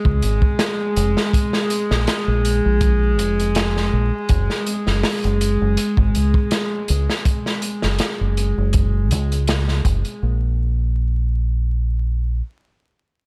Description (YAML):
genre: trip hop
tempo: 81 BPM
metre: 4/4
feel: swing 54% on 16ths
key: unclear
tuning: A4 = 440 Hz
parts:
  - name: rich chamber string section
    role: sustained chords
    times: 0.0-10.2 s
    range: Ab3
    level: -25 LUFS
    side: equal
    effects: none
  - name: deep dub fingered electric bass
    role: bass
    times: 0.1-12.4 s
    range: F1 to Db2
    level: -21 LUFS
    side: equal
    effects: none
  - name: crunchy breakbeat drum kit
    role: drums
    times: 0.1-10.2 s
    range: hi-hat, kick drum, snare drum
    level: -23 LUFS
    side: equal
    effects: none
room: little or no reverb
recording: vinyl crackle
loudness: -20 LUFS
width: mono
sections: 0.0-10.2 A section; 10.2-13.2 B section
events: none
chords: 0.0 Bb7(no3); 4.3 Gbsus2; 10.2 N.C.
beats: 0.58 | 1.32 2.06 2.81 3.55 | 4.29 5.03 5.77 6.51 | 7.25 7.99 8.73 9.47 | 10.21 10.95 11.70